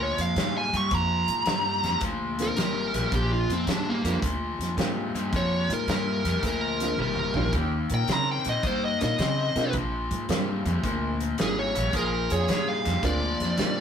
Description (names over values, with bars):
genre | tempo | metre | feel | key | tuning
electric blues shuffle | 109 BPM | 4/4 | swing 67% on 8ths | Bb mixolydian | A4 = 439 Hz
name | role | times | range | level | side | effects
smooth overdriven lead guitar | melody | 0.0-13.8 s | Bb3 to Db6 | -27 LUFS | equal | none
overdriven electric guitar | riff | 0.0-13.8 s | Bb2 to C4 | -30 LUFS | left 4 dB | spring reverb
upright bass | bass | 0.0-13.8 s | Ab1 to Db3 | -29 LUFS | equal | none
natural country drum kit | drums | 0.2-13.8 s | hi-hat, kick drum, snare drum, toms | -32 LUFS | equal | none
honky-tonk upright piano | accompaniment | 2.4-13.8 s | G3 to F4 | -33 LUFS | right 4 dB | none
clear horn section | stabs | 7.5-8.5, 11.9-12.9 s | Bb3 to Bb4 | -33 LUFS | right 3 dB | none
room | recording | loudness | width
moderate studio reverb, RT60 0.6 s | rough rehearsal-room recording | -24 LUFS | side -8 dB against mid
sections
0.0-13.8 A section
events
lead electric guitar solo 0.0-13.8; drum fill 7.0-7.5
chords
0.0 Bb7; 7.5 Eb7; 9.7 Bb7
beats
0.37 | 0.92 1.47 2.02 2.58 | 3.13 3.68 4.23 4.78 | 5.33 5.88 6.44 6.99 | 7.54 8.09 8.64 9.19 | 9.74 10.29 10.84 11.39 | 11.94 12.49 13.04 13.59